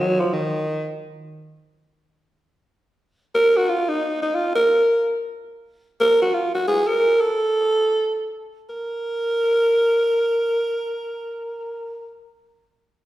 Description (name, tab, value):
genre	jazz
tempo	free time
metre	none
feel	none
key	unclear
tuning	A4 = 438 Hz
part	growling alto saxophone	solo	0.0-1.0, 3.3-12.1 s	Eb3 to Bb4	-19 LUFS	equal	none
room	wet recital hall reverb, RT60 1.5 s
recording	recorded in a church or concert hall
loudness	-18 LUFS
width	side -15 dB against mid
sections	0.0-3.3 A section; 3.3-8.7 B section; 8.7-11.4 C section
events	none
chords	none